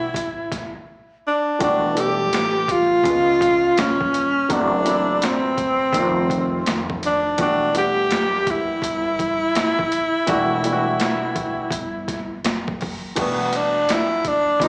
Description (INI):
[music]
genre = hip hop, jazz-hop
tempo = 83 BPM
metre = 4/4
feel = swing 61% on 16ths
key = E minor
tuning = A4 = 440 Hz
[part]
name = breathy tenor saxophone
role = melody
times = 0.0-14.7 s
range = B3 to G4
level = -22 LUFS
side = equal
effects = slapback echo
[part]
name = dark concert grand piano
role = accompaniment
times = 0.0-14.7 s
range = C#3 to F#5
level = -27 LUFS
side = equal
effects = slapback echo
[part]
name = upright bass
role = bass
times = 0.0-14.7 s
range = D#1 to C#2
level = -33 LUFS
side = equal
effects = none
[part]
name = boom bap sampler-style drum kit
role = drums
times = 0.1-14.7 s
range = crash cymbal, hi-hat, kick drum, snare drum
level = -28 LUFS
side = equal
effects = overdrive
[sound]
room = light reverb, studio ambience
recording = live gig heard through the venue's PA, club reverb, small speaker sound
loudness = -20 LUFS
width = mono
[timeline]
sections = 0.0-1.6 A section; 1.6-13.2 B section; 13.2-14.7 C section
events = drums muted 0.9-1.6; tenor saxophone solo 13.2-14.7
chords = 0.0 E7sus4; 1.6 Em11; 3.1 C#7; 4.5 F#m7b5; 5.9 F9; 7.4 Em11